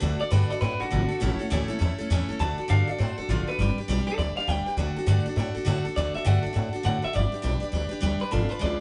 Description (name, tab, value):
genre	rock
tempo	202 BPM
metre	4/4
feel	swing 64% on 8ths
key	D major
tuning	A4 = 444 Hz
part	picked steel-string acoustic guitar	accompaniment	0.0-8.8 s	A2 to B4	-32 LUFS	equal	none
part	upright bass	bass	0.0-8.7 s	G1 to A2	-28 LUFS	equal	none
part	electric guitar through a small old amp	melody	0.2-8.8 s	F4 to A5	-33 LUFS	equal	spring reverb
room	light reverb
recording	band playing live in one room, nothing above 10.7 kHz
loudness	-26 LUFS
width	mono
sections	0.0-2.4 A section; 2.4-8.8 B section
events	clean electric guitar solo 2.4-8.8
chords	0.0 D; 1.2 A; 2.4 D; 3.6 G; 4.8 D; 7.1 G